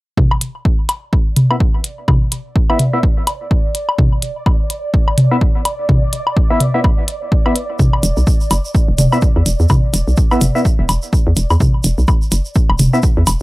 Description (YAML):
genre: minimal techno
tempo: 126 BPM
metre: 4/4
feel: swing 58% on 16ths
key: unclear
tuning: A4 = 440 Hz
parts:
  - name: electronic kick drum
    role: drums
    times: 0.2-13.1 s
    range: none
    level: -14 LUFS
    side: equal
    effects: none
  - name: electronic toms and woodblock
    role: percussion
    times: 0.2-13.4 s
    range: none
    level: -16 LUFS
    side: equal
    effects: overdrive, analog delay
  - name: bubbling stepped-filter texture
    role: texture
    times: 1.9-13.4 s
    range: D5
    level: -27 LUFS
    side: right 2 dB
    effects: chorus, built-in reverb, sidechain pumping
  - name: electronic hi-hat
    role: drums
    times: 0.4-13.4 s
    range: none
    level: -21 LUFS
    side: equal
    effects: overdrive
  - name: percussive organ stab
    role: stabs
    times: 1.5-13.0 s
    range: B3 to E5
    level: -18 LUFS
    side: equal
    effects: lush chorus, analog delay
  - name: egg shaker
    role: percussion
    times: 7.8-13.4 s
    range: none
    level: -27 LUFS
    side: right 3 dB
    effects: none
  - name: hollow knocking FM bass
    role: bass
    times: 8.0-13.4 s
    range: E1 to E2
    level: -14 LUFS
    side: equal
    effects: sidechain pumping
room: light reverb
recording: dry, gritty hardware recording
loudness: -12 LUFS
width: side -20 dB against mid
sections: 0.2-13.4 A section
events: filter sweep on synth stab 0.2-13.4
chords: 0.2 E5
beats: | 0.18 0.65 1.13 1.60 | 2.08 2.56 3.03 3.51 | 3.98 4.46 4.94 5.41 | 5.89 6.37 6.84 7.32 | 7.79 8.27 8.75 9.22 | 9.70 10.18 10.65 11.13 | 11.60 12.08 12.56 13.03